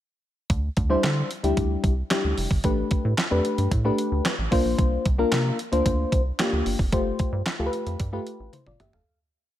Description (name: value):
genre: early-eighties boogie funk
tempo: 112 BPM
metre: 4/4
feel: straight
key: D minor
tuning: A4 = 437 Hz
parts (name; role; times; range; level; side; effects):
- rubbery square bass; bass; 0.5-9.0 s; F1 to D3; -26 LUFS; right 1 dB; none
- clean 12-bit digital drum machine; drums; 0.5-9.1 s; handclaps, hi-hat, kick drum, snare drum, toms; -26 LUFS; right 1 dB; gated reverb
- mellow FM electric piano; accompaniment; 0.9-9.2 s; G3 to F5; -25 LUFS; left 2 dB; chorus
room: little or no reverb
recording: none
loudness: -21 LUFS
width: side -12 dB against mid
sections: 0.5-9.1 verse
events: fade-out 6.9-9.1; drum fill 8.5-9.1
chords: 0.5 D9sus4; 2.6 A9sus4; 4.5 C9sus4; 6.9 G9sus4